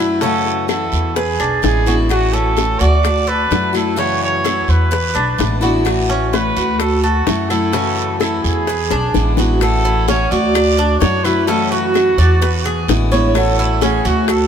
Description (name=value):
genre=latin, Cuban son and guajira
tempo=128 BPM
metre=4/4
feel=straight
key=A major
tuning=A4 = 442 Hz
part: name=picked steel-string acoustic guitar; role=accompaniment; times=0.0-14.3 s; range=C#3 to F#4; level=-21 LUFS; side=left 4 dB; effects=none
part: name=Cuban tres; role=arpeggios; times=0.0-14.5 s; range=C#4 to D5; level=-20 LUFS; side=right 2 dB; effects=none
part: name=upright bass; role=bass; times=0.0-14.5 s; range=A1 to F#2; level=-18 LUFS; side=equal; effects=none
part: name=warm trumpet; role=melody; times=0.2-14.5 s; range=F#4 to D5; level=-20 LUFS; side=right 3 dB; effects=none
part: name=bongos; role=percussion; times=0.2-14.5 s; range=none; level=-23 LUFS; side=left 6 dB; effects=none
part: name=guiro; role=percussion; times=0.2-14.5 s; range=none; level=-30 LUFS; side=right 7 dB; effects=none
part: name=claves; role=percussion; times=0.7-14.5 s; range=none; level=-32 LUFS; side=left 8 dB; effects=none
room=moderate plate reverb, RT60 3.7 s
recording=heard from further back in the room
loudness=-13 LUFS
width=side -8 dB against mid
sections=0.0-9.6 A section; 9.6-14.5 B section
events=drum fill 8.9-9.6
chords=0.2 F#m7; 1.2 E7; 2.1 A6; 3.0 Dadd9; 4.0 F#m7; 4.9 E7; 5.9 A6; 6.8 Dadd9; 7.7 F#m7; 8.7 E7; 9.6 A6; 10.5 Dadd9; 11.5 F#m7; 12.4 E7; 13.4 A6